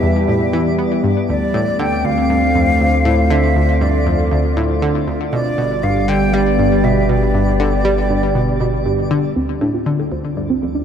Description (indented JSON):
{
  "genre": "ambient, sequencer-driven space music",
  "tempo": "119 BPM",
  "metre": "4/4",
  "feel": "straight",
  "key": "D dorian",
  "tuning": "A4 = 441 Hz",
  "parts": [
    { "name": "breathy mellow silver concert flute", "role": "melody", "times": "0.0-8.9 s", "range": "D5 to G5", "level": "-21 LUFS", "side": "equal", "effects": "ping-pong delay" },
    { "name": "sweeping resonant pad", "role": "sustained chords", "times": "0.0-10.8 s", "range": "D3 to C5", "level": "-19 LUFS", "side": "left 1 dB", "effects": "wide subtle chorus" },
    { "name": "analog pluck", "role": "riff", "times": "0.0-10.8 s", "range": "D2 to B3", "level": "-19 LUFS", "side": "equal", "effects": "chorus, vintage 12-bit sampler grit, ping-pong delay" },
    { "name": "round analog bass", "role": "bass", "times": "0.0-10.8 s", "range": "G1 to E2", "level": "-20 LUFS", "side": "equal", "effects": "none" },
    { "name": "twinkling granular texture", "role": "texture", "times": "0.0-10.8 s", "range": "D5", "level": "-31 LUFS", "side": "right 2 dB", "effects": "built-in reverb" },
    { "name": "soft round pluck", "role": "arpeggios", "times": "9.4-10.8 s", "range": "C4 to D5", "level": "-20 LUFS", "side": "right 2 dB", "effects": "chorus, auto-pan, cassette tape, ping-pong delay" }
  ],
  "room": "wet cathedral reverb, RT60 6.8 s",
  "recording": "in a vast, echoing space",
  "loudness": "-14 LUFS",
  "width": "side -8 dB against mid",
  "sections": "0.0-9.4 A section; 9.4-10.8 B section",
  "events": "none",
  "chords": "0.0 Em; 1.3 Dm7; 5.3 G; 9.4 Dm7"
}